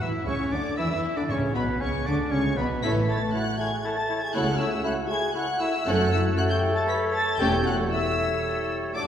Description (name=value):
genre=quick classical-period movement for symphony orchestra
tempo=118 BPM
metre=3/4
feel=straight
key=A major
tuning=A4 = 439 Hz
part: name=dark studio violin section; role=melody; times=0.0-9.1 s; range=B5 to B6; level=-31 LUFS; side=left 2 dB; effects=none
part: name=clear oboe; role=second line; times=0.0-9.1 s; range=B4 to E5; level=-34 LUFS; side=right 1 dB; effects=none
part: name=dark studio violin section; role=second line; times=0.0-9.1 s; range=B3 to C#5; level=-36 LUFS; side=left 2 dB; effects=none
part: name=mellow hollow silver concert flute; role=second line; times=0.0-9.1 s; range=B4 to B5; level=-33 LUFS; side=left 1 dB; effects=none
part: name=warm clarinet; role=second line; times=0.0-9.1 s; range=B3 to A4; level=-33 LUFS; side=left 1 dB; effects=none
part: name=dark studio viola section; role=accompaniment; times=0.0-9.1 s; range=E3 to E4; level=-32 LUFS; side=right 1 dB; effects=none
part: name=mellow bassoon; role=accompaniment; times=0.0-9.1 s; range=B2 to A3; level=-32 LUFS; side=equal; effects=none
part: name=warm French horn section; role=sustained chords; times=0.0-9.1 s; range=B3 to B4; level=-33 LUFS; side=left 2 dB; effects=none
part: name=dark studio cello section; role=bass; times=0.0-9.1 s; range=E2 to E3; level=-32 LUFS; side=right 2 dB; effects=none
part: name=rich studio double bass section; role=bass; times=0.0-9.1 s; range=E1 to E2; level=-31 LUFS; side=right 1 dB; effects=none
part: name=timpani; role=percussion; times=1.3-2.0 s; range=A2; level=-36 LUFS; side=right 1 dB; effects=none
room=wet concert hall reverb, RT60 2.1 s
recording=heard from further back in the room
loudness=-23 LUFS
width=side -9 dB against mid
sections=0.0-9.1 A section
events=none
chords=0.0 Dmaj7sus2/C#; 1.3 Bmadd9; 2.8 A; 4.4 A/C#; 5.9 F#m; 7.4 A7/E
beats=0.26 0.78 | 1.29 1.80 2.31 | 2.83 3.33 3.84 | 4.35 4.86 5.36 | 5.87 6.38 6.89 | 7.40 7.92 8.44 | 8.95